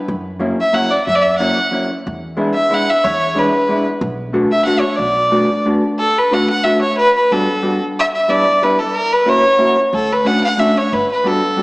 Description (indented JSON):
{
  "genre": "musette waltz",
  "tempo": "183 BPM",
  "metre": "3/4",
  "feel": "straight",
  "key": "B minor",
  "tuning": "A4 = 437 Hz",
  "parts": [
    { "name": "upright bass", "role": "bass", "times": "0.1-5.4, 9.9-11.0 s", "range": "G1 to F#2", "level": "-26 LUFS", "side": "equal", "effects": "none" },
    { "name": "vintage hollow-body jazz guitar", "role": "accompaniment", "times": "0.4-11.6 s", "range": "F#3 to F#4", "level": "-18 LUFS", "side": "equal", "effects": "none" },
    { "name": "clear violin", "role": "melody", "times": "0.6-11.6 s", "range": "A4 to F#5", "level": "-14 LUFS", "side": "equal", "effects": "none" }
  ],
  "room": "wet scoring stage reverb, RT60 1.9 s",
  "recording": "small speaker sound",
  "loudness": "-13 LUFS",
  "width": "side -23 dB against mid",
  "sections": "0.0-6.0 A section; 6.0-11.6 B section",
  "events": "none",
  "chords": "0.1 F#7; 2.1 E7; 4.0 Bm7; 7.0 Gmaj7; 8.0 Em7; 8.9 F#7; 9.9 Dmaj7; 10.9 Gmaj7"
}